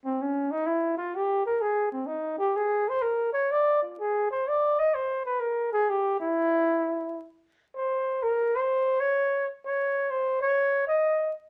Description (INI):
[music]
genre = jazz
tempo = 127 BPM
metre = 4/4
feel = swing 68% on 8ths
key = unclear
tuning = A4 = 443 Hz
[part]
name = breathy flugelhorn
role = solo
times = 0.1-11.3 s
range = C4 to Eb5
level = -27 LUFS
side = equal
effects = none
[sound]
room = moderate small room reverb, RT60 0.6 s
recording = vinyl crackle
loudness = -27 LUFS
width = mono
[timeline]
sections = 0.0-9.2 A section; 9.2-11.5 A section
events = flugelhorn solo 0.0-11.5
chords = none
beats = 0.18 0.65 1.13 | 1.60 2.07 2.55 3.02 | 3.49 3.96 4.43 4.91 | 5.38 5.85 6.32 6.80 | 7.27 7.74 8.21 8.69 | 9.16 9.63 10.10 10.57 | 11.05